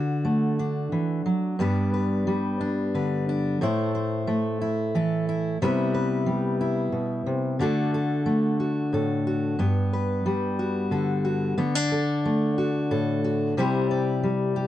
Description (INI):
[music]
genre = folk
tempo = 90 BPM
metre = 3/4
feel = straight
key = G major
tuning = A4 = 440 Hz
[part]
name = fingerpicked steel-string acoustic guitar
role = solo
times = 0.0-14.7 s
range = G2 to D5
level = -23 LUFS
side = left 1 dB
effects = none
[sound]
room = light reverb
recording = dark, warm production, nothing above 10.5 kHz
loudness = -23 LUFS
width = side -13 dB against mid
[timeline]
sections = 0.0-1.6 A section; 1.6-14.7 B section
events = none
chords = 0.0 D; 1.6 G; 3.6 Am; 5.6 Cmaj7; 7.6 D; 9.6 Gmaj7; 11.6 D; 13.6 Cadd9